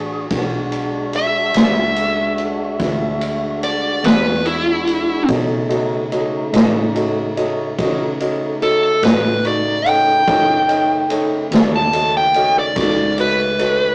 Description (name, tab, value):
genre	slow blues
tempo	48 BPM (dotted quarters)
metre	12/8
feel	straight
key	unclear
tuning	A4 = 440 Hz
part	tonewheel organ	sustained chords	0.0-13.9 s	C#3 to G#4	-25 LUFS	equal	slow rotary speaker
part	vintage muted fingered electric bass	bass	0.0-13.9 s	A1 to C#3	-26 LUFS	equal	none
part	swinging big-band drum kit	drums	0.3-13.8 s	kick drum, ride cymbal, snare drum	-20 LUFS	equal	none
part	dark smooth lead guitar	melody	1.2-13.9 s	E4 to A5	-16 LUFS	equal	overdrive
part	warm upright piano	accompaniment	5.3-13.9 s	D#4 to C#6	-20 LUFS	equal	none
room	moderate studio reverb, RT60 0.5 s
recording	rough rehearsal-room recording, tube saturation, small speaker sound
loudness	-14 LUFS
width	side -39 dB against mid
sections	0.0-13.9 A section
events	lead electric guitar solo 0.0-13.9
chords	0.0 E9; 5.3 B9